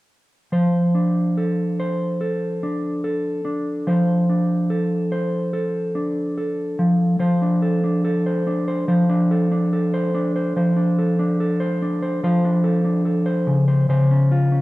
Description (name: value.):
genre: indie pop.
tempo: 72 BPM.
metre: 4/4.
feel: straight.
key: F major.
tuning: A4 = 440 Hz.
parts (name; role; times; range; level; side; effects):
mellow electric guitar; solo; 0.5-14.6 s; Db3 to C5; -18 LUFS; equal; warbly pitch drift.
room: wet large studio reverb, RT60 1.3 s.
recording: band playing live in one room.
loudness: -18 LUFS.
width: side -18 dB against mid.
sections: 0.5-7.2 A section; 7.2-14.6 B section.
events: none.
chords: 0.5 F6; 6.8 N.C.; 7.2 F6; 13.5 Dbmaj7.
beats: | 0.53 1.37 2.20 3.04 | 3.87 4.71 5.54 6.38 | 7.21 8.05 8.88 9.72 | 10.55 11.39 12.22 13.06 | 13.89.